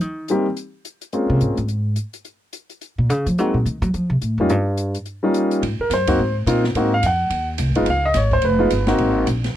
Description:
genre	jazz piano trio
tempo	214 BPM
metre	4/4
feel	swing 60% on 8ths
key	Ab major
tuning	A4 = 445 Hz
part	upright bass	bass	0.0-9.5 s	F1 to Gb3	-20 LUFS	equal	none
part	open jazz drum kit	drums	0.0-9.5 s	hi-hat, kick drum, ride cymbal, snare drum	-29 LUFS	equal	none
part	warm grand piano	melody	0.3-9.3 s	G3 to Gb5	-18 LUFS	equal	none
room	little or no reverb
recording	dry, close 1970s-style studio recording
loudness	-17 LUFS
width	side -12 dB against mid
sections	0.0-5.6 A section; 5.6-9.6 A section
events	upright bass solo 0.0-5.6; grand piano solo 5.6-9.6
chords	0.0 Cm7; 0.6 N.C.; 1.1 Bbm7; 2.3 Bbm; 3.4 Ab7; 3.9 F; 4.5 Eb7; 5.6 Ab7; 7.9 Db7; 9.0 Ab7

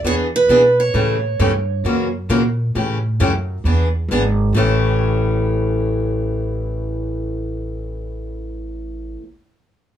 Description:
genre	acoustic string swing (jazz manouche)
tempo	133 BPM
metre	4/4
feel	swing 65% on 8ths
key	A mixolydian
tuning	A4 = 439 Hz
part	picked steel-string acoustic guitar	accompaniment	0.0-9.2 s	A2 to G#4	-20 LUFS	left 2 dB	none
part	upright bass	bass	0.0-9.1 s	G#1 to B2	-21 LUFS	right 1 dB	none
part	picked steel-string acoustic guitar	melody	0.1-2.1 s	B4 to C#5	-16 LUFS	right 3 dB	none
room	light reverb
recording	small room ambience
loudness	-16 LUFS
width	side -10 dB against mid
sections	0.0-4.5 A section; 4.5-8.1 B section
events	none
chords	0.0 E7; 0.9 A7; 1.8 F#7; 2.7 A7; 3.6 E7; 4.5 A7

